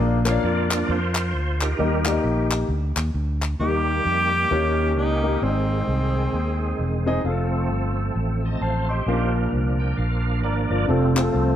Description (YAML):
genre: uptempo gospel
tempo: 132 BPM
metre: 4/4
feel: swing 60% on 8ths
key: Eb major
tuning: A4 = 441 Hz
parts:
  - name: warm concert grand piano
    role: accompaniment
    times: 0.0-11.6 s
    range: Ab2 to C6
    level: -25 LUFS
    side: left 4 dB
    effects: none
  - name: fingered electric bass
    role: bass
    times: 0.0-11.6 s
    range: Fb1 to F2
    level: -23 LUFS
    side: equal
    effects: none
  - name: bright tonewheel organ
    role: sustained chords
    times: 0.3-11.6 s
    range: C3 to A5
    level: -27 LUFS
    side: right 4 dB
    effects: slow rotary speaker, chorus vibrato
  - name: group handclap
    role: percussion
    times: 0.3-3.5, 11.2-11.3 s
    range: none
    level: -28 LUFS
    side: left 3 dB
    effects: none
  - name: clear tenor saxophone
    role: melody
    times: 3.6-7.1 s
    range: C4 to G4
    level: -25 LUFS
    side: equal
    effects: slapback echo
room: light reverb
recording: none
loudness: -20 LUFS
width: side -10 dB against mid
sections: 0.0-3.6 A section; 3.6-10.9 B section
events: tonewheel organ solo 0.0-3.6; tonewheel organ fill 9.5-10.9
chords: 0.0 Bb; 1.8 Eb; 4.5 Eb7; 5.4 Ab; 7.3 F; 9.1 Bb; 10.9 F